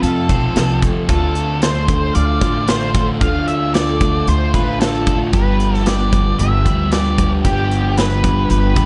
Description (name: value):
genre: rock, shoegaze and dream pop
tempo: 113 BPM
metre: 4/4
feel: straight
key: unclear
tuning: A4 = 439 Hz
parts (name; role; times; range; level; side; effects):
- octave-fuzz lead guitar; melody; 0.0-8.9 s; G4 to F5; -24 LUFS; equal; distortion, slapback echo
- picked twelve-string acoustic guitar; arpeggios; 0.0-8.9 s; F4 to C5; -29 LUFS; equal; ensemble chorus, slapback echo
- raw garage guitar; riff; 0.0-8.9 s; F2 to G4; -26 LUFS; equal; overdrive, reverse reverb
- thick fuzz guitar; riff; 0.0-8.9 s; F2 to D4; -24 LUFS; equal; distortion, lush chorus
- upright bass; bass; 0.0-8.9 s; G1 to F2; -22 LUFS; equal; none
- big rock drum kit; drums; 0.0-8.9 s; hi-hat, kick drum, snare drum; -21 LUFS; equal; none
room: little or no reverb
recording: dark, warm production, nothing above 10.7 kHz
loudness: -16 LUFS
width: mono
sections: 0.0-8.9 A section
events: none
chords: 0.0 F; 1.1 Dm7; 5.3 G7